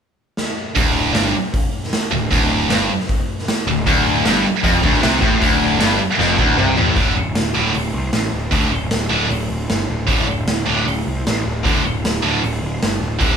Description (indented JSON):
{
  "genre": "hard rock",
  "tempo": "154 BPM",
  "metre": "4/4",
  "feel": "straight",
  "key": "D minor",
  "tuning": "A4 = 440 Hz",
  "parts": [
    { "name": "raw garage drum kit", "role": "drums", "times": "0.4-13.3 s", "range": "hi-hat, kick drum, snare drum, toms", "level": "-20 LUFS", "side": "equal", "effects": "none" },
    { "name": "heavy high-gain guitar", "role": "riff", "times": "0.8-13.4 s", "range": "D2 to D3", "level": "-18 LUFS", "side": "right 1 dB", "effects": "distortion" },
    { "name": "fuzz picked electric bass", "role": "bass", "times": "0.8-13.4 s", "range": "D1 to D2", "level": "-22 LUFS", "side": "equal", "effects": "overdrive" },
    { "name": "distorted electric guitar", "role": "riff", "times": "3.9-7.0 s", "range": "D2 to C3", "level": "-18 LUFS", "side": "left 2 dB", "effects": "overdrive" }
  ],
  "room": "light reverb",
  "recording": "band playing live in one room",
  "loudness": "-15 LUFS",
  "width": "side -7 dB against mid",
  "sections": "0.8-7.0 A section; 7.0-13.4 B section",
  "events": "drum fill 0.4-0.8, 6.2-7.0",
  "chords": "0.0 N.C.; 0.8 Dm; 7.0 D5",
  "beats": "0.38 | 0.76 1.15 1.54 1.93 | 2.31 2.70 3.09 3.47 | 3.86 4.25 4.64 5.02 | 5.41 5.80 6.19 6.58 | 6.97 7.36 7.75 8.13 | 8.53 8.91 9.30 9.70 | 10.09 10.47 10.86 11.25 | 11.64 12.03 12.42 12.81 | 13.20"
}